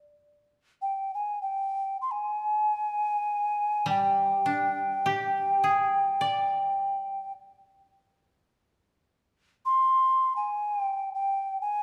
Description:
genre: japanese traditional, Japanese chamber music.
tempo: free time.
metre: none.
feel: none.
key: unclear.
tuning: A4 = 440 Hz.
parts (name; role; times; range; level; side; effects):
mellow hollow alto ocarina; melody; 0.8-11.8 s; G5 to C6; -28 LUFS; equal; none.
koto; accompaniment; 3.9-8.5 s; G3 to D5; -35 LUFS; equal; none.
room: moderate recital hall reverb, RT60 1.3 s.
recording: recorded in a church or concert hall.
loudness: -27 LUFS.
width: mono.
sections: 0.0-11.8 A section.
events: none.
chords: none.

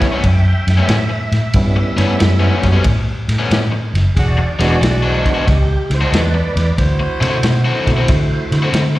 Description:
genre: electric blues shuffle.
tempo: 92 BPM.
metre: 4/4.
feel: swing 66% on 8ths.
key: unclear.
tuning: A4 = 440 Hz.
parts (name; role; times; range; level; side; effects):
tonewheel organ; accompaniment; 0.0-8.7 s; G3 to G5; -22 LUFS; right 3 dB; slow rotary speaker, overdrive, chorus vibrato, plate reverb, slapback echo.
raw garage guitar; riff; 0.0-9.0 s; A2 to F#4; -20 LUFS; left 3 dB; overdrive, spring reverb, slapback echo.
clear horn section; stabs; 0.0-0.1, 4.2-7.9 s; G#3 to C5; -24 LUFS; right 2 dB; plate reverb, slapback echo.
vintage muted fingered electric bass; bass; 0.0-9.0 s; E1 to D3; -15 LUFS; equal; none.
vintage drum kit; drums; 0.0-8.9 s; kick drum, ride cymbal, snare drum; -19 LUFS; equal; none.
room: light reverb.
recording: live gig heard through the venue's PA, recital hall reverb.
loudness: -12 LUFS.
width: side -17 dB against mid.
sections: 0.0-9.0 A section.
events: none.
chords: 0.0 A9; 4.2 E9; 6.8 D9.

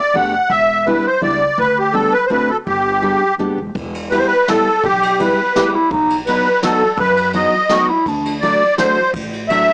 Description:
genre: musette waltz.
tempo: 167 BPM.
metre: 3/4.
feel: swing 54% on 8ths.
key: G major, E minor from 3.8 s.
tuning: A4 = 439 Hz.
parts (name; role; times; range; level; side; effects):
musette accordion; melody; 0.0-9.7 s; G4 to F#5; -14 LUFS; equal; none.
fingerpicked steel-string acoustic guitar; accompaniment; 0.1-9.7 s; F#3 to G4; -20 LUFS; equal; none.
upright bass; bass; 0.1-9.6 s; E1 to F#2; -26 LUFS; equal; tube saturation.
jazz brush drum kit; drums; 3.8-9.6 s; kick drum, ride cymbal, snare drum; -26 LUFS; equal; none.
mellow clarinet; second line; 5.6-8.3 s; D4 to G4; -16 LUFS; equal; none.
room: light reverb.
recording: dry, gritty hardware recording, small speaker sound.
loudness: -13 LUFS.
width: side -35 dB against mid.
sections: 0.0-3.8 A section; 3.8-9.7 B section.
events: none.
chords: 0.0 Gadd9; 0.5 Em7; 1.6 G/D; 2.3 D7; 2.7 G; 3.8 Em; 5.9 B; 8.1 D.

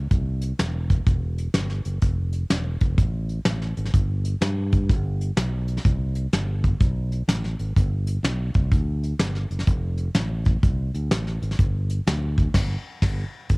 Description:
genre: uptempo gospel.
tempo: 125 BPM.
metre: 4/4.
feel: swing 65% on 8ths.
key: unclear.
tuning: A4 = 442 Hz.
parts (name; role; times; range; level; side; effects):
fingered electric bass; bass; 0.0-13.6 s; E1 to G2; -25 LUFS; equal; none.
soft brush drum kit; drums; 0.1-13.6 s; crash cymbal, hi-hat, kick drum, snare drum; -22 LUFS; equal; cassette tape.
room: little or no reverb.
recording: home recording on cassette.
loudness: -21 LUFS.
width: side -29 dB against mid.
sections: 0.0-13.5 A section.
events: band accent 12.5-13.5.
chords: none.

